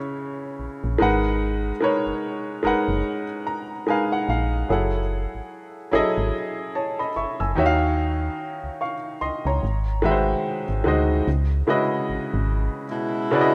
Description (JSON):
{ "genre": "R&B", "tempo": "73 BPM", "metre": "4/4", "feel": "swing 59% on 16ths", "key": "unclear", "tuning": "A4 = 440 Hz", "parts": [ { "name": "clear upright piano", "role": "accompaniment", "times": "0.0-13.5 s", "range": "C#3 to E6", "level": "-25 LUFS", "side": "equal", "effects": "none" }, { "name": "solid FM bass", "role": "bass", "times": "0.6-12.7 s", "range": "F#1 to D#2", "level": "-27 LUFS", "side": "equal", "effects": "none" }, { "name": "warm horn section", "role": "stabs", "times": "12.9-13.5 s", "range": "B2 to E4", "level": "-25 LUFS", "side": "equal", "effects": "none" } ], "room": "light reverb", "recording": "rough home demo mix", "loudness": "-24 LUFS", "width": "mono", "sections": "0.0-11.3 A section; 11.3-13.5 B section", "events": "upright piano fill 3.0-4.7", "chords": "0.0 C#m9; 1.0 G#m9; 4.7 F#m9; 7.6 D#m9; 9.6 G#7b13; 11.3 C#m11" }